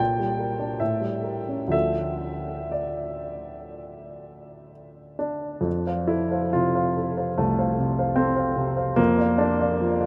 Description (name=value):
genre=classical, romantic character piece for solo piano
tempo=59-77 BPM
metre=4/4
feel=rubato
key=D minor, F major from 5.7 s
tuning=A4 = 440 Hz
part: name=warm baby grand piano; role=solo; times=0.0-10.1 s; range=C2 to G5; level=-25 LUFS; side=equal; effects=none
room=wet huge ambient reverb, RT60 7.8 s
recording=in a vast, echoing space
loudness=-25 LUFS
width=mono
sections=0.0-5.7 A section; 5.7-10.1 B section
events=none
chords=0.0 Gm/Bb; 0.8 A7b9; 1.7 Dm; 5.7 F; 9.0 Bb/F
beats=0.00 0.81 | 1.73 2.74 3.74 4.72 | 5.66 6.54 7.39 8.18 | 8.98 9.81